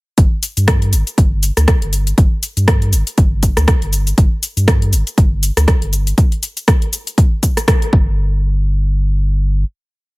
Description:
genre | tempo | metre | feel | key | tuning
afro house | 120 BPM | 4/4 | swing 57% on 16ths | unclear | A4 = 440 Hz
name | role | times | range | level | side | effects
warm sub bass | bass | 0.2-9.6 s | G1 to G2 | -15 LUFS | equal | sidechain pumping
electronic kick drum | drums | 0.2-8.0 s | none | -12 LUFS | equal | overdrive
house drum kit | drums | 0.2-7.9 s | cabasa, hi-hat, rim click | -19 LUFS | equal | overdrive
room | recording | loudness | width
digital ambience | none | -12 LUFS | side -22 dB against mid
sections
0.2-8.2 drop; 8.2-10.2 final hit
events
drop 0.2-8.2; band accent 7.7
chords
none

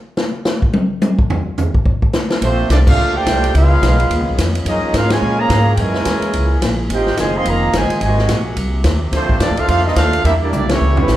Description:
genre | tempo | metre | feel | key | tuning
jazz, big band swing | 214 BPM | 4/4 | swing 60% on 8ths | unclear | A4 = 440 Hz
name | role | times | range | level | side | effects
swinging big-band drum kit | drums | 0.2-11.2 s | crash cymbal, hi-hat, kick drum, ride cymbal, snare drum, toms | -18 LUFS | equal | none
mellow trumpet section | melody | 2.4-11.2 s | A3 to C6 | -19 LUFS | right 1 dB | plate reverb
clear trombone section | second line | 2.4-11.2 s | C3 to G4 | -21 LUFS | right 2 dB | none
mellow saxophone section | sustained chords | 2.4-11.2 s | Bb2 to Ab4 | -27 LUFS | left 1 dB | none
upright bass | bass | 2.4-11.2 s | F1 to Bb2 | -16 LUFS | equal | none
room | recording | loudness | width
wet large studio reverb, RT60 0.9 s | heard from further back in the room | -13 LUFS | side -14 dB against mid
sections
0.0-2.4 A section; 2.4-11.2 B section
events
drum solo 0.0-2.4; band accent 2.8, 5.1, 10.7; drum fill 10.5-11.1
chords
0.0 N.C.; 2.4 Bbmaj9; 3.5 Db9; 4.7 Gbmaj9; 5.8 Gb9; 6.9 Ab6; 8.0 Ab9; 9.1 Bbmaj9; 10.2 Em7b5

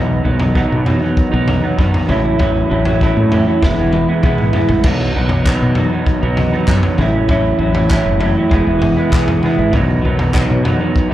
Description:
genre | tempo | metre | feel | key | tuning
indie rock | 98 BPM | 4/4 | straight | B mixolydian | A4 = 440 Hz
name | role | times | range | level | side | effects
electric guitar through a small old amp | riff | 0.0-11.1 s | A2 to B4 | -21 LUFS | left 6 dB | none
electric guitar through a small old amp | riff | 0.0-11.1 s | A2 to E4 | -17 LUFS | right 4 dB | analog chorus, slapback echo
woody fretless electric bass | bass | 0.0-10.8 s | E1 to B2 | -17 LUFS | equal | none
raw garage drum kit | drums | 0.4-11.1 s | crash cymbal, kick drum, snare drum, toms | -17 LUFS | equal | none
group handclap | percussion | 5.5-10.5 s | none | -27 LUFS | left 1 dB | none
room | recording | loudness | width
little or no reverb | live gig heard through the venue's PA, club reverb | -12 LUFS | side -13 dB against mid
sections
0.0-11.1 A section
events
drum fill 3.6-4.9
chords
0.0 B; 2.1 A6; 3.6 E; 4.9 B; 7.0 A6; 8.5 E; 9.7 B

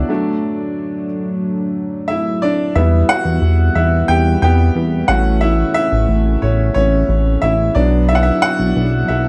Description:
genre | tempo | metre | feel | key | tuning
piano-driven pop | 90 BPM | 4/4 | straight | unclear | A4 = 440 Hz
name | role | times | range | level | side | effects
clear upright piano | accompaniment | 0.0-9.3 s | E3 to G5 | -19 LUFS | equal | none
chorused pulse-width pad | sustained chords | 0.0-9.3 s | E3 to D4 | -25 LUFS | equal | none
chorused synth bass | bass | 0.0-9.3 s | A1 to E2 | -17 LUFS | equal | none
room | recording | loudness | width
moderate large studio reverb, RT60 0.8 s, studio reverb | dark, warm production | -16 LUFS | mono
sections
0.0-2.8 A section; 2.8-9.3 B section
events
upright piano solo 0.0-2.8, 2.8-9.3; break 0.1-2.8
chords
0.1 D; 2.8 Em; 5.1 A; 7.8 Bm

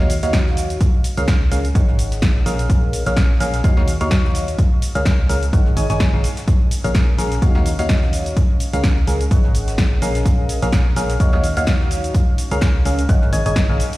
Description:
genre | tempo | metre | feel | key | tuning
piano house | 127 BPM | 4/4 | swing 56% on 16ths | unclear | A4 = 445 Hz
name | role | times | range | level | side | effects
barking FM electric piano | riff | 0.0-13.8 s | Db4 to Ab5 | -24 LUFS | equal | phaser, tremolo, vintage 12-bit sampler grit, sidechain pumping, dub echo
solid FM bass | bass | 0.0-13.8 s | Ab1 to Eb2 | -20 LUFS | equal | sidechain pumping
airy breathy pad | texture | 0.7-14.0 s | Db4 to Gb5 | -37 LUFS | equal | none
jazz brush drum kit | drums | 0.1-14.0 s | hi-hat, snare drum | -39 LUFS | left 2 dB | none
punchy analog drum machine | drums | 0.1-14.0 s | hi-hat, shaker, snare drum | -26 LUFS | equal | none
electronic kick drum | drums | 0.3-13.7 s | none | -16 LUFS | equal | none
room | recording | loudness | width
little or no reverb | played on a big sound system in a bare room, stone room reverb | -15 LUFS | side -18 dB against mid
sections
0.0-14.0 A section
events
none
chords
0.0 Ebm9; 0.8 Db6; 1.8 Ab7sus4; 2.7 Bbm7; 3.6 Ebm9; 4.6 Db6; 5.5 Ab7sus4; 6.5 Bbm7; 7.4 Ebm9; 8.4 Db6; 9.3 Ab7sus4; 10.3 Bbm7; 11.2 Ebm9; 12.1 Db6; 13.1 Ab7sus4

